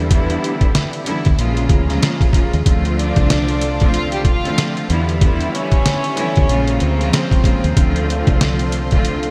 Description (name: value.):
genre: hip hop, boom-bap hip-hop.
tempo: 94 BPM.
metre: 4/4.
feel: swing 60% on 16ths.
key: unclear.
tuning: A4 = 440 Hz.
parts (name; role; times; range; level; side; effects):
warm analog pad; sustained chords; 0.0-9.3 s; Db3 to C6; -32 LUFS; equal; chorus.
deep dub fingered electric bass; bass; 0.0-9.3 s; Bb1 to E2; -22 LUFS; equal; none.
clear studio string section; accompaniment; 0.1-9.3 s; Db3 to F4; -23 LUFS; equal; cassette tape.
trip hop sampler-style drum kit; drums; 0.1-9.3 s; hi-hat, kick drum, snare drum; -19 LUFS; equal; none.
warm studio violin section; melody; 3.0-7.7 s; G3 to F5; -26 LUFS; equal; diffuse ambient delay.
room: moderate huge ambient reverb, RT60 7.5 s.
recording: dreamy mix soaked in reverb.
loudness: -16 LUFS.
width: mono.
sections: 0.0-9.3 A section.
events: none.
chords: 0.0 Em7; 1.4 Bbm7; 2.7 Dm7; 4.9 Em7; 6.5 Bbm7; 7.8 Dm7.